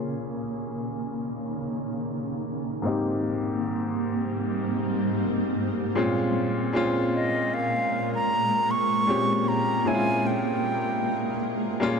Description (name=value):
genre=R&B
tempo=77 BPM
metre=4/4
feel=swing 54% on 16ths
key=Bb dorian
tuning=A4 = 440 Hz
part: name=clear baby grand piano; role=accompaniment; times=0.0-12.0 s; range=Ab2 to Ab4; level=-28 LUFS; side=left 1 dB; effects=none
part: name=granular cloud pad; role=sustained chords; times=0.0-12.0 s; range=Ab2 to Bb4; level=-28 LUFS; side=equal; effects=built-in reverb
part: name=breathy silver concert flute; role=melody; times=7.2-11.8 s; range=Eb5 to Db6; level=-26 LUFS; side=right 2 dB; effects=digital delay
room=light reverb, small room ambience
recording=dark, warm production, low-pass filter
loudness=-24 LUFS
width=side -5 dB against mid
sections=0.0-6.0 A section; 6.0-12.0 B section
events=filter sweep 0.0-6.0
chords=0.0 Eb7sus4/Bb; 2.9 Abmaj9; 6.0 Bbm9